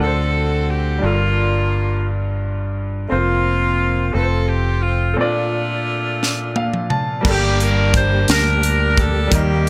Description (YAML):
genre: slow gospel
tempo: 58 BPM (dotted quarters)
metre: 6/8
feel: straight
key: unclear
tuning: A4 = 440 Hz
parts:
  - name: bright saxophone section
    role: melody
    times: 0.0-9.7 s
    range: A3 to C5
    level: -24 LUFS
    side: equal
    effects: tape echo
  - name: clear upright piano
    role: accompaniment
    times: 0.0-9.7 s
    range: G2 to A5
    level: -25 LUFS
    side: equal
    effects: none
  - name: fingered electric bass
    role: bass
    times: 0.0-9.7 s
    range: F1 to Eb2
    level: -21 LUFS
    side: equal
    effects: none
  - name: crisp fusion drum kit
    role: drums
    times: 6.2-9.7 s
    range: crash cymbal, hi-hat, kick drum, snare drum, toms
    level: -22 LUFS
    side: equal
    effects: none
  - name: tonewheel organ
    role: sustained chords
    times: 7.2-9.7 s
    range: D3 to G4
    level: -28 LUFS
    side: equal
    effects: slow rotary speaker, overdrive, chorus vibrato
room: light reverb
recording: none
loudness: -18 LUFS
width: mono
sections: 0.0-7.2 A section; 7.2-9.7 B section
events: break 5.2-7.2; upright piano fill 6.2-7.2; drum fill 6.2-7.2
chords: 0.0 D7; 1.0 Gm7; 3.1 Fsus4; 4.1 F; 5.2 Bbmaj7; 7.2 Gm